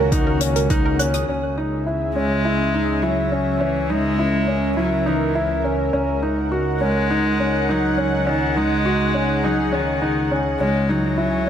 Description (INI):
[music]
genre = piano and strings electronica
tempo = 103 BPM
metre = 4/4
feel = straight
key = C# dorian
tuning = A4 = 440 Hz
[part]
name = lush unison pad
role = sustained chords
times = 0.0-11.5 s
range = D#3 to G#5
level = -25 LUFS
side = equal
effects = chorus, sidechain pumping
[part]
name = analog pluck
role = arpeggios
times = 0.0-1.2 s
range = A#4 to F#6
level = -25 LUFS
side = right 5 dB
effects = chorus, phaser, sidechain pumping, tape echo
[part]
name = warm grand piano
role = riff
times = 0.0-11.5 s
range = C#4 to F#4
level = -22 LUFS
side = equal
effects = tape echo
[part]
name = dark detuned saw bass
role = bass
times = 0.0-11.5 s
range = C#2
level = -25 LUFS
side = equal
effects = sidechain pumping
[part]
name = electronic kick drum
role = drums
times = 0.1-0.8 s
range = none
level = -20 LUFS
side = equal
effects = overdrive
[part]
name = hi-hat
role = drums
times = 0.1-1.3 s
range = none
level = -28 LUFS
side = left 8 dB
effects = low-pass filter on hats, low-pass filter on room
[part]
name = warm cello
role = melody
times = 2.2-11.5 s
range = D#3 to G#3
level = -22 LUFS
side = equal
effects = none
[sound]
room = moderate lush hall reverb, RT60 2.1 s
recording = none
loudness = -18 LUFS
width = side -9 dB against mid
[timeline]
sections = 0.0-1.3 A section; 1.3-11.5 B section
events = none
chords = 0.0 D#m/C#; 1.3 C#m; 5.9 D#m/C#; 10.6 C#m